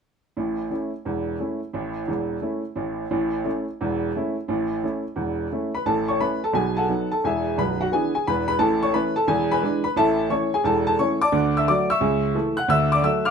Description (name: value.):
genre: jazz, stride piano.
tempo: 176 BPM.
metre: 4/4.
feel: swing 65% on 8ths.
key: A major.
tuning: A4 = 440 Hz.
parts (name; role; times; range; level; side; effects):
warm grand piano; solo; 0.4-13.3 s; B0 to F#6; -21 LUFS; equal; none.
room: moderate studio reverb, RT60 0.8 s.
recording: minimal, uncompressed stereo recording.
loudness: -21 LUFS.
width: side -6 dB against mid.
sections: 0.4-5.9 A section; 5.9-13.3 B section.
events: none.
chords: 0.4 A; 6.5 B7; 7.2 E7; 8.6 A; 9.3 E7; 10.0 A; 11.3 D; 12.0 A/C#; 12.7 D.